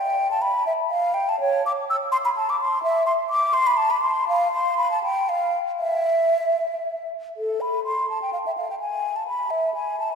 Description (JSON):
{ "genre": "classical, baroque-style fantasia for unaccompanied flute", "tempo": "75-86 BPM (dotted quarters)", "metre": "6/8", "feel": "rubato", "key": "A minor", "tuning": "A4 = 440 Hz", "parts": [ { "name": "mellow hollow concert flute", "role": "solo", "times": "0.0-10.2 s", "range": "A4 to E6", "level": "-20 LUFS", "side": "equal", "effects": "none" } ], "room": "wet church reverb, RT60 3.2 s", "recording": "minimal, uncompressed stereo recording", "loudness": "-20 LUFS", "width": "side -6 dB against mid", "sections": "0.0-7.4 A section; 7.4-10.2 A section", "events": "none", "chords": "none" }